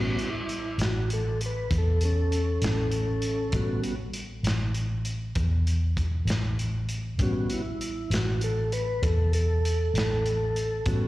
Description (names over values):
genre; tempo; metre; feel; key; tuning
slow blues; 66 BPM (dotted quarters); 12/8; straight; A mixolydian; A4 = 440 Hz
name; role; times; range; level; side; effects
mellow tonewheel organ; sustained chords; 0.0-11.1 s; G3 to B4; -29 LUFS; equal; slow rotary speaker
vintage muted fingered electric bass; bass; 0.0-11.1 s; A1 to E2; -26 LUFS; equal; none
crunchy breakbeat drum kit; drums; 0.2-11.0 s; hi-hat, kick drum, snare drum; -33 LUFS; equal; none
room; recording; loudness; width
little or no reverb; live gig heard through the venue's PA, recital hall reverb; -24 LUFS; side -16 dB against mid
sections
0.0-11.1 A section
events
tonewheel organ solo 0.0-11.1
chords
0.0 A69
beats
0.80 1.71 2.63 | 3.54 4.46 5.37 6.28 | 7.20 8.11 9.03 9.94 | 10.86